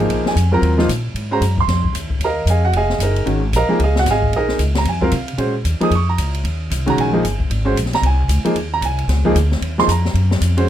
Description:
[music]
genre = modal jazz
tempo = 227 BPM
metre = 4/4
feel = swing 61% on 8ths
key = Eb dorian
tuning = A4 = 442 Hz
[part]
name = warm baby grand piano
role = accompaniment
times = 0.0-10.7 s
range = Eb3 to Eb6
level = -18 LUFS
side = right 2 dB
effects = none
[part]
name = upright bass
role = bass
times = 0.0-10.7 s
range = F1 to C3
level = -18 LUFS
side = equal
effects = none
[part]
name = open jazz drum kit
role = drums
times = 0.0-10.6 s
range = hi-hat, kick drum, ride cymbal, snare drum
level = -25 LUFS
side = left 2 dB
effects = none
[sound]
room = little or no reverb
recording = close, detailed microphones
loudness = -15 LUFS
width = side -11 dB against mid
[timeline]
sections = 0.0-10.7 A section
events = none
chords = 0.0 Eb9sus4

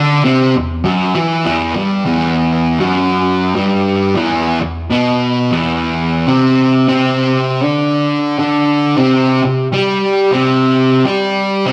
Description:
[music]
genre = rock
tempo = 100 BPM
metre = 4/4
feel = straight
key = E minor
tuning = A4 = 439 Hz
[part]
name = fuzz guitar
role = solo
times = 0.0-11.7 s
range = E2 to G4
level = -14 LUFS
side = equal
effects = distortion
[sound]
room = moderate stone room reverb, RT60 1.3 s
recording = rough rehearsal-room recording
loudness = -14 LUFS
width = mono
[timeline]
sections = 0.0-2.1 A section; 2.1-11.7 B section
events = none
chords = 0.0 Em; 6.9 C5

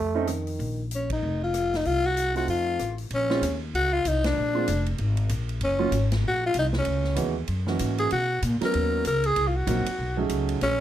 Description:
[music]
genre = jazz, small-group swing and bop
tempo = 192 BPM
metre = 4/4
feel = swing 61% on 8ths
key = Bb minor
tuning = A4 = 440 Hz
[part]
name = growling trombone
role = second line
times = 0.0-0.8 s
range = Eb3 to A3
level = -30 LUFS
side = right 4 dB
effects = none
[part]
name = upright bass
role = bass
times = 0.0-10.8 s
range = F1 to B2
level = -27 LUFS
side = equal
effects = none
[part]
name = warm grand piano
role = accompaniment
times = 0.1-0.3, 2.3-10.6 s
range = Fb3 to A#4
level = -28 LUFS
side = right 5 dB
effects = none
[part]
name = swinging big-band drum kit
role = drums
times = 0.3-10.7 s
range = hi-hat, kick drum, ride cymbal, rim click, snare drum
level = -36 LUFS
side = equal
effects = none
[part]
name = growling tenor saxophone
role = melody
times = 1.0-10.8 s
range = Db4 to A#4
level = -25 LUFS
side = left 2 dB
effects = none
[sound]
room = light reverb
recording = none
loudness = -23 LUFS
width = side -11 dB against mid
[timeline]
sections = 0.0-3.1 A section; 3.1-10.8 B section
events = band accent 1.1, 4.2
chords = 0.0 F7b13; 0.6 Bb5; 1.9 Cdim; 2.5 F7; 3.1 Bbmadd9; 4.4 Bb7; 5.6 Ebm7 (rootless); 6.9 Dbm11; 7.5 Gb13; 8.1 Bmaj9; 9.4 Cm7b5; 10.0 B13

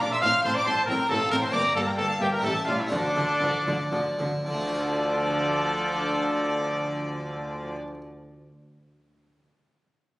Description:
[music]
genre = classical, baroque-style concerto movement with solo episodes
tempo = 108-139 BPM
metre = 3/4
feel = straight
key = D minor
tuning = A4 = 439 Hz
[part]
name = warm chamber violin section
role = melody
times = 0.0-7.7 s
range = D5 to F6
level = -30 LUFS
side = equal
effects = none
[part]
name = warm trumpet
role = melody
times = 0.0-7.7 s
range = D4 to F5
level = -27 LUFS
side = equal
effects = none
[part]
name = rich chamber violin section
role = second line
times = 0.0-7.7 s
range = D4 to C6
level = -33 LUFS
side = equal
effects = none
[part]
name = dark chamber viola section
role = accompaniment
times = 0.0-7.7 s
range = F3 to D4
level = -33 LUFS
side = equal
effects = none
[part]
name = harpsichord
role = accompaniment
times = 0.0-8.0 s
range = G2 to D5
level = -33 LUFS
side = equal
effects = none
[part]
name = rich chamber double bass section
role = bass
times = 0.0-7.7 s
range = G1 to D2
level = -37 LUFS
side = right 1 dB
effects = none
[part]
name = warm chamber cello section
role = bass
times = 0.0-7.7 s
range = G2 to D3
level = -34 LUFS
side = equal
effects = none
[sound]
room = wet recital hall reverb, RT60 1.5 s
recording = recorded on a phone in the room, club reverb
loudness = -23 LUFS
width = side -19 dB against mid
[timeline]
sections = 0.0-4.5 A section; 4.5-7.8 B section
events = slowing down 0.9-4.5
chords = 0.2 F/A; 1.5 Gm; 2.4 A7; 2.9 Dm

